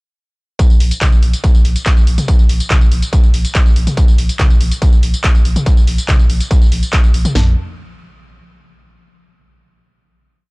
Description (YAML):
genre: driving peak-time techno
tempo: 142 BPM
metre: 4/4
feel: straight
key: unclear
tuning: A4 = 439 Hz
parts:
  - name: techno drum kit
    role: drums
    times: 0.6-7.5 s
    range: kick drum, snare drum, toms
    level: -11 LUFS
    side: equal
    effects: distortion
  - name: techno drum kit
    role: drums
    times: 0.6-7.3 s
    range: handclaps, hi-hat, tambourine, toms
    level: -21 LUFS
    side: equal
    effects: none
  - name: saturated sub bass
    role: bass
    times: 0.7-7.5 s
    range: Bb1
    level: -16 LUFS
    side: equal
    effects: tube saturation, sidechain pumping, low-pass filter
room: little or no reverb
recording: dry, gritty hardware recording, cassette tape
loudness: -10 LUFS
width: side -27 dB against mid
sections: 0.6-7.4 drop; 7.4-9.0 final note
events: drop 0.6-7.4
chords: none